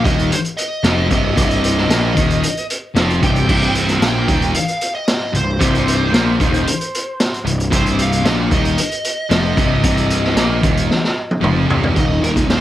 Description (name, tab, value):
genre	quiet-loud alternative rock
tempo	114 BPM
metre	4/4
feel	straight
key	C minor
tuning	A4 = 440 Hz
part	smooth overdriven lead guitar	melody	0.0-12.6 s	Bb4 to G5	-23 LUFS	right 1 dB	none
part	high-gain distorted guitar	riff	0.0-12.6 s	C2 to Bb3	-24 LUFS	right 8 dB	distortion, cassette tape
part	thick fuzz guitar	riff	0.0-12.6 s	C2 to Bb3	-20 LUFS	left 6 dB	distortion, cassette tape
part	tight distorted guitar	riff	0.0-11.9 s	C2 to Bb3	-24 LUFS	right 2 dB	distortion, cassette tape
part	fuzz picked electric bass	bass	0.0-12.6 s	C1 to Bb1	-19 LUFS	equal	overdrive
part	raw garage drum kit	drums	0.1-12.6 s	crash cymbal, hi-hat, kick drum, snare drum, toms	-18 LUFS	equal	none
part	mellow electric guitar	arpeggios	11.9-12.6 s	Eb2 to Eb4	-26 LUFS	right 5 dB	none
room	little or no reverb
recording	home recording on cassette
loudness	-14 LUFS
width	side -13 dB against mid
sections	0.0-12.0 A section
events	drum fill 10.9-12.0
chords	0.0 Cm; 12.0 Eb